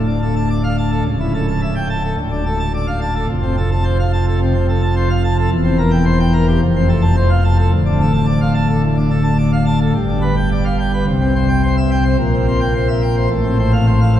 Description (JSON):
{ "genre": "classical, organ toccata", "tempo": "108 BPM", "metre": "4/4", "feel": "straight", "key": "unclear", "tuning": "A4 = 441 Hz", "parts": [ { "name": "pipe organ, plenum", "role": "solo", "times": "0.0-14.2 s", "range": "C#1 to A5", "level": "-14 LUFS", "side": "equal", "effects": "none" } ], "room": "wet cathedral reverb, RT60 5.7 s", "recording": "heard from further back in the room", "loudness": "-14 LUFS", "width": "side -11 dB against mid", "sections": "0.0-14.2 A section", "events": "none", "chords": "0.0 Dm; 1.1 A7/C#; 2.2 Dm; 3.3 F; 5.5 C7/E; 6.6 F; 7.7 Dm; 9.9 G7; 11.1 C; 12.2 C7/Bb; 13.3 F/A", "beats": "0.50 | 1.06 1.62 2.18 2.73 | 3.29 3.85 4.40 4.96 | 5.52 6.07 6.62 7.18 | 7.73 8.28 8.84 9.39 | 9.95 10.51 11.07 11.63 | 12.19 12.75 13.31 13.88" }